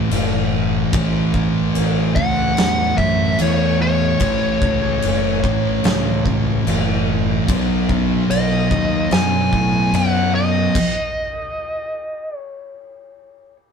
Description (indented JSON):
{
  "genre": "stoner and doom metal",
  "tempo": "73 BPM",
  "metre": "4/4",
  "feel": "straight",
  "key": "unclear",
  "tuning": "A4 = 438 Hz",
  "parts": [
    { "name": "fuzz lead guitar", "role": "melody", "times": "0.0-13.6 s", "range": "C#5 to G#5", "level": "-22 LUFS", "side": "left 2 dB", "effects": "wah, distortion" },
    { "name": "thick fuzz guitar", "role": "riff", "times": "0.0-10.7 s", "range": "A2 to B3", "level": "-21 LUFS", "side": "left 6 dB", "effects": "distortion" },
    { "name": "thick fuzz guitar", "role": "riff", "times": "0.0-10.7 s", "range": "A2 to B3", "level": "-22 LUFS", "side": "right 8 dB", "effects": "distortion" },
    { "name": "fuzz fingered electric bass", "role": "bass", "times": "0.0-10.7 s", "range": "F#1 to A2", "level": "-24 LUFS", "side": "equal", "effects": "overdrive, tube saturation" },
    { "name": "oversized low-tuned drum kit", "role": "drums", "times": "0.1-10.9 s", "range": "crash cymbal, kick drum, snare drum", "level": "-23 LUFS", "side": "equal", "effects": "none" }
  ],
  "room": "moderate studio reverb, RT60 0.7 s",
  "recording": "band playing live in one room",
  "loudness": "-16 LUFS",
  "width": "side -6 dB against mid",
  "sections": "0.0-13.7 A section",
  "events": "stop 10.8-13.7",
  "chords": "0.0 A; 7.5 B"
}